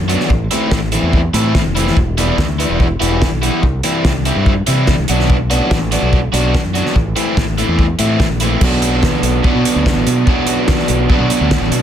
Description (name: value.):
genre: indie rock.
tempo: 144 BPM.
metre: 4/4.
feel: straight.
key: unclear.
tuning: A4 = 440 Hz.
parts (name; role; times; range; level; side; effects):
growling fingered electric bass; bass; 0.0-11.8 s; E1 to C3; -18 LUFS; equal; overdrive.
crunchy overdriven guitar; riff; 0.1-11.8 s; B2 to F#4; -16 LUFS; equal; none.
loose indie drum kit; drums; 0.1-11.8 s; crash cymbal, hi-hat, kick drum, snare drum; -17 LUFS; equal; none.
room: light reverb.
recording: dense, heavily limited modern master.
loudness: -12 LUFS.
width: side -10 dB against mid.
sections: 0.0-8.6 A section; 8.6-11.8 B section.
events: none.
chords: 0.3 Am; 2.0 Em; 3.6 C; 5.1 Bm; 7.0 Am; 8.6 Bm.